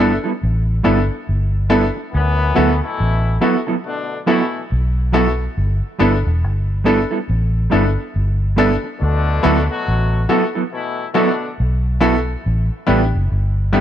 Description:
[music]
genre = reggae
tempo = 70 BPM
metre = 4/4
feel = swing 61% on 16ths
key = D major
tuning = A4 = 440 Hz
[part]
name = clear grand piano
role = accompaniment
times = 0.0-13.8 s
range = B3 to A4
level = -20 LUFS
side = left 3 dB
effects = slapback echo
[part]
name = mellow electric guitar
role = stabs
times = 0.0-13.8 s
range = F#3 to A4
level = -20 LUFS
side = right 4 dB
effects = none
[part]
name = vintage muted fingered electric bass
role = bass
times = 0.0-13.8 s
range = E1 to D2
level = -17 LUFS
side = equal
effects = none
[part]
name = clear horn section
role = second line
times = 2.1-11.5 s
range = F#2 to F#4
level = -24 LUFS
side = left 4 dB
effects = none
[sound]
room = small room reverb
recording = dry, close 1970s-style studio recording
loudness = -15 LUFS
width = side -10 dB against mid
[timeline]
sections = 0.0-13.8 A section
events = none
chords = 0.0 G69; 2.1 D69; 5.6 G69; 9.0 D69; 12.4 A9sus4

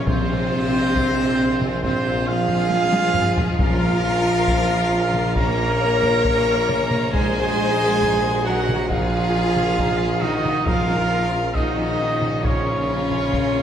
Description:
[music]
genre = cinematic, epic orchestral film score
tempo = 68 BPM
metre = 4/4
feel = straight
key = Bb minor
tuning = A4 = 441 Hz
[part]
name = clear studio violin section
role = melody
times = 0.0-13.6 s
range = F4 to Db5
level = -29 LUFS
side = left 3 dB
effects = none
[part]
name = warm symphonic violin section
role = second line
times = 0.0-13.6 s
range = Ab3 to Gb4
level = -32 LUFS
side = left 3 dB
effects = none
[part]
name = clear symphonic viola section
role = accompaniment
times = 0.0-13.6 s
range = C4 to Bb4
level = -27 LUFS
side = right 2 dB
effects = none
[part]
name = dark French horn section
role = sustained chords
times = 0.0-13.6 s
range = C4 to Bb4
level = -26 LUFS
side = left 4 dB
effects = none
[part]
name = clear trumpet section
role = stabs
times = 0.0-13.6 s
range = C5 to Bb5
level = -24 LUFS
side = right 2 dB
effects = none
[part]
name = clear symphonic double bass section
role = bass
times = 0.0-13.6 s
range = Bb1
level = -28 LUFS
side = right 1 dB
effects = none
[part]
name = clear tuba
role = bass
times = 0.0-13.6 s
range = Bb1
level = -29 LUFS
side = right 2 dB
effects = none
[part]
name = rich symphonic cello section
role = bass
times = 0.0-13.6 s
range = C3 to Bb3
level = -26 LUFS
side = right 1 dB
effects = none
[part]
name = taiko ensemble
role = drums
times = 0.1-13.6 s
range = none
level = -26 LUFS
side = equal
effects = none
[part]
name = timpani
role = percussion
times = 0.1-4.9 s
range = Bb2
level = -29 LUFS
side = left 1 dB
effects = none
[sound]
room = wet concert hall reverb, RT60 2.5 s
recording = none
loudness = -17 LUFS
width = side -9 dB against mid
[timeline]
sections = 0.0-13.6 A section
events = drum fill 2.7-3.6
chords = 0.1 Fm/Bb; 3.6 Bbm; 7.1 Ebm/Bb; 10.7 Bbm

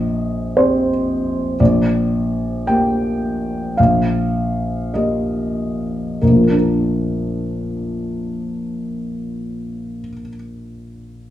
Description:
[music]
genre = classical, contemporary piece for solo felt piano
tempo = 46-59 BPM (dotted quarters)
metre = 6/8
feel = rubato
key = Bb major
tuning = A4 = 440 Hz
[part]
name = felt-muted upright piano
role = solo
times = 0.0-11.3 s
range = Bb1 to G5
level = -17 LUFS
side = equal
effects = none
[sound]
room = moderate large studio reverb, RT60 1.2 s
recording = band playing live in one room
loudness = -16 LUFS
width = side -12 dB against mid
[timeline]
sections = 0.0-6.2 A section; 6.2-11.3 B section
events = slowing down 0.6-6.2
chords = 0.0 Cm7/Bb; 1.6 Gm/Bb; 6.2 Bb

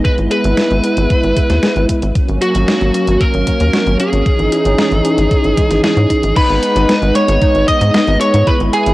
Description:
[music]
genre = synthwave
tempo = 114 BPM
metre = 4/4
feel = straight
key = G# minor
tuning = A4 = 440 Hz
[part]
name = fuzz lead guitar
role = melody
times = 0.0-8.9 s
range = F#4 to D#5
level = -16 LUFS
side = equal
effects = distortion, cassette tape, tape echo
[part]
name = brassy analog pad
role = sustained chords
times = 0.0-8.9 s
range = E3 to E4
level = -17 LUFS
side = equal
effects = chorus, sidechain pumping, cassette tape
[part]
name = detuned 8-bit digital drum machine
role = drums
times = 0.0-8.9 s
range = crash cymbal, hi-hat, snare drum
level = -19 LUFS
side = equal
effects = overdrive, cassette tape
[part]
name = electronic kick drum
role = drums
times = 0.0-8.6 s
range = none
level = -15 LUFS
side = equal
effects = overdrive, cassette tape
[part]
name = tight sequencer bass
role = bass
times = 0.2-8.9 s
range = G#1 to G#2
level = -15 LUFS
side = equal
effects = transformer saturation, sidechain pumping
[part]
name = wide unison pluck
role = arpeggios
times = 0.3-8.6 s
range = F#3 to G#4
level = -24 LUFS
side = left 1 dB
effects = none
[part]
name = soft synth bell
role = second line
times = 6.4-8.9 s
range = G#5 to D#6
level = -19 LUFS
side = equal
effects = chorus, phaser, cassette tape
[sound]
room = light reverb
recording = home recording on cassette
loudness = -11 LUFS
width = side -17 dB against mid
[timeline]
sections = 0.0-6.4 A section; 6.4-8.9 B section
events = none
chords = 0.0 E/G#; 2.2 F#/G#; 4.3 C#madd9/G#; 6.4 G#m

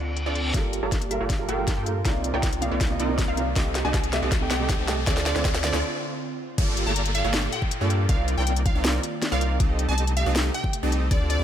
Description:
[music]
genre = future bass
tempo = 159 BPM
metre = 4/4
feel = half-time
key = G minor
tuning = A4 = 436 Hz
[part]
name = felt-muted upright piano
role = accompaniment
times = 0.0-5.8 s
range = C3 to G5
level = -31 LUFS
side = right 5 dB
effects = sidechain pumping, digital delay
[part]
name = airy breathy pad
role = sustained chords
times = 0.0-11.4 s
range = Bb2 to D5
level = -37 LUFS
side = equal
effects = chorus, sidechain pumping
[part]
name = saturated sub bass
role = bass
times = 0.0-11.4 s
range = G1 to G2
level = -27 LUFS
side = equal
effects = sidechain pumping
[part]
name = reverse cymbal, riser and downlifter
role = sound effects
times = 0.0-9.6 s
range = none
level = -35 LUFS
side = left 2 dB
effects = none
[part]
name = trap drum kit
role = drums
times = 0.2-11.4 s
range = crash cymbal, hi-hat, snare drum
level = -29 LUFS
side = left 1 dB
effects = high-pass filter on hats, low-pass filter on hats, high-pass filter on snare, low-pass filter on snare, high-pass filter on cymbals, low-pass filter on cymbals
[part]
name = glassy wavetable pluck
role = melody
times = 0.3-11.4 s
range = D5 to Bb5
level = -32 LUFS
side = equal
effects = chorus, sidechain pumping, digital delay
[part]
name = supersaw stab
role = riff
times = 0.3-11.4 s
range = Bb3 to A5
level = -30 LUFS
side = right 1 dB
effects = sidechain pumping, low-pass filter
[part]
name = electronic kick drum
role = drums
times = 0.5-11.2 s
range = none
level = -25 LUFS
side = equal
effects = overdrive
[sound]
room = light reverb, digital ambience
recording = none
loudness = -22 LUFS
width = side -10 dB against mid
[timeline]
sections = 0.5-6.6 A section; 6.6-11.4 B section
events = reverse cymbal 0.0-0.5; build-up 0.5-6.6; drum fill 0.5-5.8; riser 0.5-5.8; filter sweep on supersaw synth 0.5-6.6; filter sweep on synth pluck 0.5-6.6; break 5.8-6.6; drop 6.6-11.4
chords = 0.0 Dm7; 0.5 Gm9; 2.1 Cm11; 3.6 Am7b5/C; 5.1 Dm7; 6.6 Gm9; 8.1 Cm11; 9.6 Am7b5/C

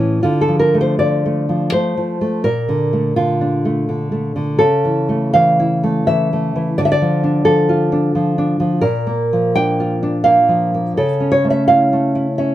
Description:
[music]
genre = romantic piece for solo classical guitar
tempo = 76-89 BPM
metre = 3/4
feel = rubato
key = D minor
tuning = A4 = 440 Hz
[part]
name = nylon-string guitar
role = solo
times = 0.0-12.5 s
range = A2 to G5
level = -14 LUFS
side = equal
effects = none
[sound]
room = moderate studio reverb, RT60 0.6 s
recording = band playing live in one room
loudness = -14 LUFS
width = side -13 dB against mid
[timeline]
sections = 0.2-12.5 A section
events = none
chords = 0.2 Dm; 2.4 Bbmaj7; 4.6 A/C#; 6.8 Dm; 8.8 Bb; 11.0 A/C#

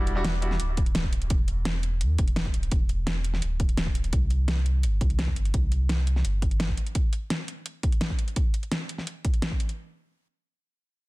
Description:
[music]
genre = liquid drum and bass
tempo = 170 BPM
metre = 4/4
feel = straight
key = unclear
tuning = A4 = 438 Hz
[part]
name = bright grand piano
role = accompaniment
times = 0.0-0.5 s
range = G3 to F#4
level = -33 LUFS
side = equal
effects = low-pass filter, dub echo
[part]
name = sub bass with octave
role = bass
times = 0.0-6.8 s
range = D1 to E2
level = -26 LUFS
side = equal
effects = tube saturation
[part]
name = pop drum kit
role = drums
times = 0.1-9.8 s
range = hi-hat, snare drum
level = -31 LUFS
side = equal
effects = none
[part]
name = electronic kick drum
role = drums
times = 0.8-9.6 s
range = none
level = -25 LUFS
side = equal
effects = none
[sound]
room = digital ambience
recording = dense, heavily limited modern master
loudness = -24 LUFS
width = side -22 dB against mid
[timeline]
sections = 0.0-9.8 A section; 9.8-11.1 B section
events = none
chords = 0.0 E7(no3); 4.1 C5; 6.8 N.C.

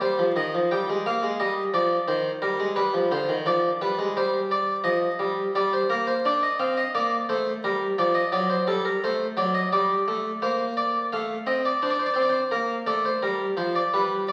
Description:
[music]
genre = classical, baroque-style two-part invention for harpsichord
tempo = 86 BPM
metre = 4/4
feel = straight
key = C minor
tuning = A4 = 438 Hz
[part]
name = harpsichord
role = solo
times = 0.0-14.3 s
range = D3 to G5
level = -24 LUFS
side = equal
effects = none
[sound]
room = wet recital hall reverb, RT60 1.6 s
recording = very old 78 rpm record, vinyl crackle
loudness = -25 LUFS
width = mono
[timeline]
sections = 0.0-11.1 A section; 11.1-14.3 B section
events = none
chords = 0.0 Cm; 2.8 G7; 4.2 Cm/G; 5.6 Gm; 8.3 D7/F#; 9.7 Gm; 11.1 F7/A; 12.5 Bb

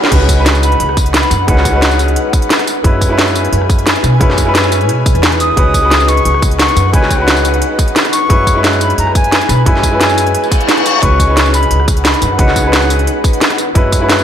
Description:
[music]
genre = liquid drum and bass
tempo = 176 BPM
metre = 4/4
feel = straight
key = unclear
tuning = A4 = 440 Hz
[part]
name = warm grand piano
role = accompaniment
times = 0.0-14.2 s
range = Ab3 to Cb5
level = -17 LUFS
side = left 1 dB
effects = ping-pong delay
[part]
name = ethereal airy pad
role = sustained chords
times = 0.0-14.2 s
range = Eb4 to Ab5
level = -19 LUFS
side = equal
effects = ensemble chorus, built-in reverb, tremolo, sidechain pumping
[part]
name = garage drum kit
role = drums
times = 0.0-14.2 s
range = crash cymbal, hi-hat, rim click, snare drum, tambourine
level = -15 LUFS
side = equal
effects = none
[part]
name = riser, swell and reverse cymbal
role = sound effects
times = 0.0-0.1, 10.5-11.0 s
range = none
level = -18 LUFS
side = left 3 dB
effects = none
[part]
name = upright bass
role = bass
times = 0.1-14.2 s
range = Db2 to Cb3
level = -15 LUFS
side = equal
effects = none
[part]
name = electronic kick drum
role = drums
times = 0.1-14.0 s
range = none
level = -13 LUFS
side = equal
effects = none
[part]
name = concert flute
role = melody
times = 0.6-2.0, 5.4-12.9 s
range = Gb5 to Eb6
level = -16 LUFS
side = left 1 dB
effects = digital delay
[sound]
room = light reverb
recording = none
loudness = -9 LUFS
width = side -9 dB against mid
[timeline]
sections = 0.1-14.2 A section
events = drop 0.1-14.2; reverse cymbal 10.5-11.0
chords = 0.1 Db9sus4; 2.7 Gb9sus4; 5.6 Db9sus4; 8.1 Gb9sus4; 11.0 Db9sus4; 13.6 Gb9sus4

